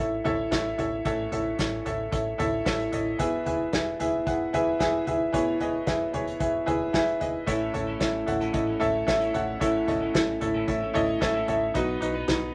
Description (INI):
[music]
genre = piano-driven pop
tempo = 112 BPM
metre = 4/4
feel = straight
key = unclear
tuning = A4 = 441 Hz
[part]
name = bright upright piano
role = accompaniment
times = 0.0-12.5 s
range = A2 to F#5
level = -28 LUFS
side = equal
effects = none
[part]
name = round analog bass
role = bass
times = 0.0-12.5 s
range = E1 to B1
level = -41 LUFS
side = equal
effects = none
[part]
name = unplugged drum kit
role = drums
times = 0.3-12.4 s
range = hi-hat, kick drum, snare drum, toms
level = -33 LUFS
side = equal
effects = none
[part]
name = twelve-string electric guitar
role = riff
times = 7.5-12.5 s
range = A2 to B4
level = -36 LUFS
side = equal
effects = none
[sound]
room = wet studio reverb, RT60 0.5 s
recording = none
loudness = -27 LUFS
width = mono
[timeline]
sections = 0.0-12.5 A section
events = none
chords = 0.0 A; 3.2 E; 7.5 A; 11.8 B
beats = 0.52 | 1.06 1.59 2.13 2.66 | 3.20 3.73 4.27 4.80 | 5.34 5.87 6.41 6.94 | 7.47 8.01 8.54 9.08 | 9.61 10.15 10.68 11.22 | 11.75 12.29